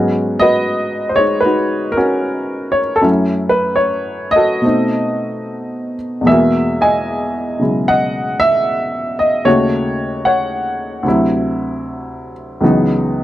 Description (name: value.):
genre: solo jazz.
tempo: 76 BPM.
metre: 4/4.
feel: swing 68% on 8ths, rubato.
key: unclear.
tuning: A4 = 440 Hz.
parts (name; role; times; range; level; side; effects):
warm baby grand piano; solo; 0.0-13.2 s; C#2 to G#5; -14 LUFS; equal; none.
room: little or no reverb.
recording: dry, close 1970s-style studio recording.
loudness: -13 LUFS.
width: side -14 dB against mid.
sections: 0.0-6.3 A section; 6.3-13.2 B section.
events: none.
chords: 0.0 G#m11; 3.0 F#m7; 4.6 B7b9; 6.3 Emaj9#11; 9.5 D#m7b5; 11.0 D9; 12.6 C#m11.